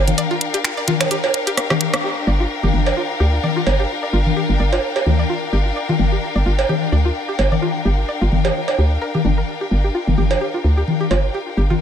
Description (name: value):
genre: minimal techno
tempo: 129 BPM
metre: 4/4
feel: swing 56% on 16ths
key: G minor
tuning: A4 = 444 Hz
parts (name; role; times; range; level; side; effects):
- hollow knocking FM bass; bass; 0.0-11.8 s; G1 to D2; -17 LUFS; equal; none
- warm studio string section; texture; 0.0-11.8 s; D4 to G5; -24 LUFS; left 4 dB; none
- garage drum kit; drums; 0.1-2.0 s; finger snaps, hi-hat, rim click; -22 LUFS; right 1 dB; overdrive, low-pass filter on snare, low-pass filter on hats
- congas and cowbell; percussion; 0.1-11.8 s; none; -20 LUFS; left 1 dB; none
- string-like resonator pluck; riff; 0.2-11.7 s; D4 to D5; -26 LUFS; equal; chorus, tape echo
room: light reverb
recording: none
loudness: -16 LUFS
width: side -9 dB against mid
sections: 0.0-2.0 A section; 2.0-11.8 B section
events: drop 0.0-2.0; break 0.2-2.0; drum fill 1.6-2.0; band accent 1.9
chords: 0.0 Gm7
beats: | 0.18 0.64 1.11 1.57 | 2.04 2.50 2.97 3.44 | 3.90 4.37 4.83 5.29 | 5.76 6.22 6.69 7.16 | 7.62 8.09 8.55 9.02 | 9.48 9.95 10.41 10.88 | 11.34 11.81